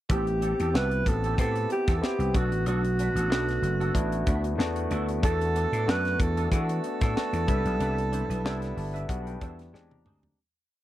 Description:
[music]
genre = polished 1980s jazz-funk pop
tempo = 94 BPM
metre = 4/4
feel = swing 54% on 16ths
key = A dorian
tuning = A4 = 439 Hz
[part]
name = breathy alto saxophone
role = melody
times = 0.1-9.7 s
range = F#4 to B4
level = -30 LUFS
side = right 2 dB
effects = none
[part]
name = barky tine electric piano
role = accompaniment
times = 0.1-10.4 s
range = G3 to Bb5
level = -33 LUFS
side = left 2 dB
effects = wide subtle chorus
[part]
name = twangy electric guitar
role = riff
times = 0.1-10.3 s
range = B3 to C5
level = -38 LUFS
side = right 4 dB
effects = ensemble chorus
[part]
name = vintage slap bass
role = bass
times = 0.1-10.3 s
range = F#1 to E3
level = -28 LUFS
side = equal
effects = none
[part]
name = tight funk drum kit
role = drums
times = 0.1-10.4 s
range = hi-hat, kick drum, snare drum, toms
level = -28 LUFS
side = equal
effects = none
[sound]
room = little or no reverb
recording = dry, close 1970s-style studio recording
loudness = -24 LUFS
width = side -14 dB against mid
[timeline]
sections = 0.1-10.4 verse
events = fade-out 7.8-10.4; tine electric piano fill 8.4-10.4; drum fill 9.7-10.4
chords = 0.1 Am7; 2.3 Bm7; 5.2 E7sus4; 7.5 Cmaj9; 9.7 E7alt

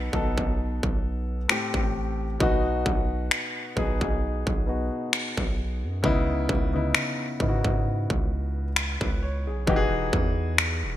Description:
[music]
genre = contemporary R&B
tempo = 66 BPM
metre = 4/4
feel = swing 54% on 16ths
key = C# minor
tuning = A4 = 440 Hz
[part]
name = dark grand piano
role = accompaniment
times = 0.0-11.0 s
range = A2 to C#5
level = -28 LUFS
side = left 2 dB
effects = none
[part]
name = long sustained 808-style bass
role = bass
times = 0.0-11.0 s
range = D#1 to G#2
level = -29 LUFS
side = right 1 dB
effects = none
[part]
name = industrial drum kit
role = drums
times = 0.1-10.8 s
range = finger snaps, kick drum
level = -25 LUFS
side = equal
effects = distortion, gated reverb
[sound]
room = light reverb, digital ambience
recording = bright 1980s-style digital production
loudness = -23 LUFS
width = side -13 dB against mid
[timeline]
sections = 0.0-11.0 A section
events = none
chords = 0.0 B7; 1.5 Am7; 2.4 G#m7/B; 6.0 C#m9; 9.7 Emaj9

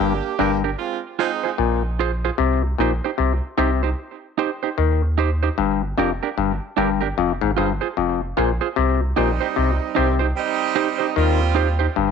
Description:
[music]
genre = reggae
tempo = 75 BPM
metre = 4/4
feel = swing 61% on 16ths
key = C minor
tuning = A4 = 440 Hz
[part]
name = warm horn section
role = second line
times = 0.0-1.5, 9.2-11.8 s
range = Eb3 to G4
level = -24 LUFS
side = right 11 dB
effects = dub echo
[part]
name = bright clav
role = riff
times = 0.0-12.1 s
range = F2 to Eb3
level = -22 LUFS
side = left 12 dB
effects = none
[part]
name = soft dub sub bass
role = bass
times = 0.0-12.1 s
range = F1 to Eb2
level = -22 LUFS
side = equal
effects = none
[part]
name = semi-hollow electric guitar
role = accompaniment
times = 0.4-11.9 s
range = D4 to C5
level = -24 LUFS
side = right 12 dB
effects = dub echo
[sound]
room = moderate spring reverb, RT60 1.3 s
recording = 1960s-style stereo with parts hard left and right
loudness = -18 LUFS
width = side -6 dB against mid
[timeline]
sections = 0.0-8.8 A section; 8.8-12.1 A section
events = none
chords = 0.0 Gm; 0.8 Fm; 2.4 Cm; 5.6 Gm; 7.2 Fm; 8.8 Cm

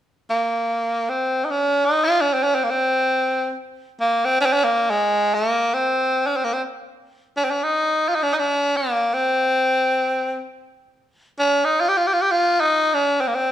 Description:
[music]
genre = Arabic maqam ensemble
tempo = free time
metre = none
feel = none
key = C maqam bayati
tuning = A4 = 439 Hz
[part]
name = raspy tenor saxophone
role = solo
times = 0.3-13.5 s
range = Ab3 to G4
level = -18 LUFS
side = equal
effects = none
[sound]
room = moderate recital hall reverb, RT60 1.4 s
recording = minimal, uncompressed stereo recording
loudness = -18 LUFS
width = side -11 dB against mid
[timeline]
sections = 0.0-13.5 A section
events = none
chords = none

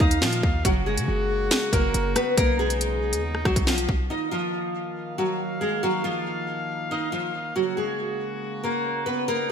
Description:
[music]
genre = hip hop, drill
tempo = 139 BPM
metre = 4/4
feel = half-time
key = Eb minor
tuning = A4 = 443 Hz
[part]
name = nylon-string guitar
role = melody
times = 0.0-9.5 s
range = F3 to Eb5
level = -25 LUFS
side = equal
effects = lush chorus, digital delay
[part]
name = warm brass ensemble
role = sustained chords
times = 0.0-9.5 s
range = Db3 to F5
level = -32 LUFS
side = equal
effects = none
[part]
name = hard-hitting 808-style bass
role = bass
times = 0.0-4.1 s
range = Gb1 to Db3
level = -26 LUFS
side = equal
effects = none
[part]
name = drill drum kit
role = drums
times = 0.0-4.0 s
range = hi-hat, kick drum, rim click, snare drum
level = -23 LUFS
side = equal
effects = none
[sound]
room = moderate lush hall reverb, RT60 1.6 s, studio reverb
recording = bright 1980s-style digital production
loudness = -22 LUFS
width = side -7 dB against mid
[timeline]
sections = 0.0-4.1 A section; 4.1-9.5 B section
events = none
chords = 0.0 Ebsus2; 0.6 Gb; 2.4 Badd9; 4.1 Ebmadd9; 7.6 Gb

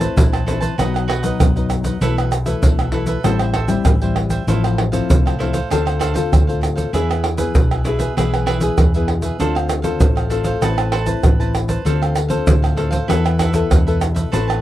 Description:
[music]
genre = samba and choro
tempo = 97 BPM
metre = 4/4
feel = straight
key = unclear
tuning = A4 = 442 Hz
[part]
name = cavaquinho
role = accompaniment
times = 0.0-14.6 s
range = D4 to A5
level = -26 LUFS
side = right 5 dB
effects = none
[part]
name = nylon-string guitar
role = accompaniment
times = 0.0-14.6 s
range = F#2 to B4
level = -22 LUFS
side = left 5 dB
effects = none
[part]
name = hollow-body short-scale fingered electric bass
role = bass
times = 0.0-14.6 s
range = A1 to E2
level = -20 LUFS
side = equal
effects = none
[part]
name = tube shaker, surdo, pandeiro and tamborim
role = percussion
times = 0.0-14.6 s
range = none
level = -18 LUFS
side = right 1 dB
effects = none
[sound]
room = light reverb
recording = dry, close 1970s-style studio recording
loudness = -15 LUFS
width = side -14 dB against mid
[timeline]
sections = 0.0-14.6 A section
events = none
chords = 0.0 Amadd9; 0.8 B; 2.0 Esus4/B; 3.2 Am7; 4.5 Fmaj7/A; 5.7 Dm7; 6.9 E; 9.4 Dm7; 10.6 Amadd9; 11.9 Dm7; 13.1 Esus4

